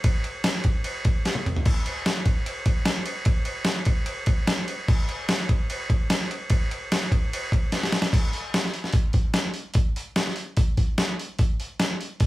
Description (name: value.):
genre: rock.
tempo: 148 BPM.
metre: 4/4.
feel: straight.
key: none.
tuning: none.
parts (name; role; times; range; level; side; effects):
boom bap sampler-style drum kit; drums; 0.0-12.3 s; crash cymbal, hi-hat, kick drum, ride cymbal, snare drum, splash cymbal, toms; -22 LUFS; equal; overdrive.
room: light reverb.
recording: band playing live in one room.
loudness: -22 LUFS.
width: side -17 dB against mid.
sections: 0.0-8.1 A section; 8.1-12.3 B section.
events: drum fill 1.2-1.6, 7.7-8.1.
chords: none.